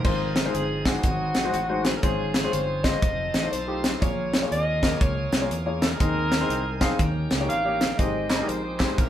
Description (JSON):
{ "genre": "uptempo gospel", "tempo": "121 BPM", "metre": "4/4", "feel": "swing 64% on 8ths", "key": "Ab major", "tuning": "A4 = 440 Hz", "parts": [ { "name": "clear alto saxophone", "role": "melody", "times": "0.0-9.1 s", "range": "Gb4 to F5", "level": "-29 LUFS", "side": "right 1 dB", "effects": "none" }, { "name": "warm baby grand piano", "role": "accompaniment", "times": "0.0-9.1 s", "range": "Ab2 to F5", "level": "-29 LUFS", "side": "left 3 dB", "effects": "none" }, { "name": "bright tonewheel organ", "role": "sustained chords", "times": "0.0-9.1 s", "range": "Eb3 to A4", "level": "-36 LUFS", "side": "right 3 dB", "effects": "slow rotary speaker, overdrive" }, { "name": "fingered electric bass", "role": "bass", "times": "0.0-9.1 s", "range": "F1 to Fb2", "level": "-30 LUFS", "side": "right 1 dB", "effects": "none" }, { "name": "crisp fusion drum kit", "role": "drums", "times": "0.0-9.1 s", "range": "crash cymbal, hi-hat, kick drum, snare drum", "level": "-25 LUFS", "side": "equal", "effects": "none" }, { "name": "group handclap", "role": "percussion", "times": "8.3-8.9 s", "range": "none", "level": "-34 LUFS", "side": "right 2 dB", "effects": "none" } ], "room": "moderate studio reverb, RT60 0.6 s", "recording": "band playing live in one room", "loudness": "-22 LUFS", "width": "side -11 dB against mid", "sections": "0.0-9.1 A section", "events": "none", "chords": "0.0 Ab6; 1.0 Ab7; 2.0 Dbmaj7/Ab; 3.0 F7; 4.0 Bbm7; 6.0 Ab/Eb; 7.0 Eb7; 8.0 Abmaj7" }